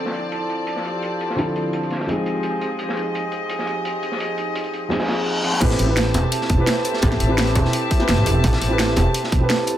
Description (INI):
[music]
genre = liquid drum and bass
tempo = 170 BPM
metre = 4/4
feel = straight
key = A minor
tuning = A4 = 442 Hz
[part]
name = dark concert grand piano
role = accompaniment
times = 0.0-9.8 s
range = D3 to B4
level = -24 LUFS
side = equal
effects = digital delay
[part]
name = dark studio string section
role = sustained chords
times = 0.0-9.8 s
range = F3 to A5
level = -28 LUFS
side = left 3 dB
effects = sidechain pumping, low-pass filter
[part]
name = vibraphone with medium hard mallets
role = arpeggios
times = 0.0-9.8 s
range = Eb4 to A5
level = -27 LUFS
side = right 3 dB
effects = tape echo
[part]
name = crunchy breakbeat drum kit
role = drums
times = 0.1-9.8 s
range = hi-hat, snare drum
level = -30 LUFS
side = equal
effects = high-pass filter on hats, low-pass filter on hats, high-pass filter on snare, low-pass filter on snare, high-pass filter on room, low-pass filter on room
[part]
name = reverse cymbal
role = sound effects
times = 5.0-5.6 s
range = none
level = -24 LUFS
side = left 2 dB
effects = none
[part]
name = upright bass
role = bass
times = 5.6-9.4 s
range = E1 to A1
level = -20 LUFS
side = equal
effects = tube saturation
[part]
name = drum and bass drum kit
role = drums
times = 5.6-9.7 s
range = crash cymbal, hi-hat, snare drum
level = -24 LUFS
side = right 1 dB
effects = overdrive
[part]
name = electronic kick drum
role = drums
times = 5.6-9.4 s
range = none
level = -20 LUFS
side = equal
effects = overdrive
[part]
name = bongos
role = percussion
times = 5.6-9.0 s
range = none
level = -27 LUFS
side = right 1 dB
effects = none
[sound]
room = light reverb, small room ambience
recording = none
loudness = -18 LUFS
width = side -12 dB against mid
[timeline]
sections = 0.0-5.6 A section; 5.6-9.8 B section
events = filter sweep on grand piano 0.0-5.6; reverse cymbal 5.0-5.6; drop 5.6-9.8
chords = 0.0 Dm7; 2.1 Fm7; 5.6 Am7